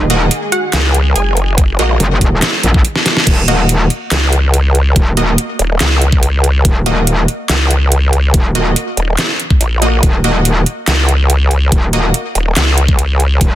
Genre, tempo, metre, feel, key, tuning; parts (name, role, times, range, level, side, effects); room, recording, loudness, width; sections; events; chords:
heavy wobble dubstep; 142 BPM; 4/4; half-time; Eb minor; A4 = 435 Hz
wide unison pluck; melody; 0.0-3.2 s; Eb4 to Ab5; -20 LUFS; right 2 dB; cassette tape, ping-pong delay
supersaw chords; sustained chords; 0.0-3.3 s; Eb3 to Ab4; -26 LUFS; equal; sidechain pumping, low-pass filter
metallic wobble bass; bass; 0.0-13.6 s; Eb1 to Bb1; -13 LUFS; equal; distortion, chorus, overdrive
orchestra-hit-like synth stab; stabs; 0.1-12.0 s; Bb3 to Eb5; -19 LUFS; right 1 dB; built-in reverb, ping-pong delay
dubstep drum kit; drums; 0.1-13.5 s; crash cymbal, handclaps, hi-hat, snare drum; -16 LUFS; right 1 dB
vowel-sweep wobble bass; bass; 0.7-13.4 s; Eb1 to Db2; -11 LUFS; equal; chorus, overdrive
electronic kick drum; drums; 1.6-13.5 s; -12 LUFS; equal
little or no reverb; dense, heavily limited modern master; -10 LUFS; side -13 dB against mid
0.0-3.3 A section; 3.3-13.6 A section
drop 0.0-3.3, 3.3-13.6; drum fill 3.0-3.3
0.0 Ebm; 3.3 Eb5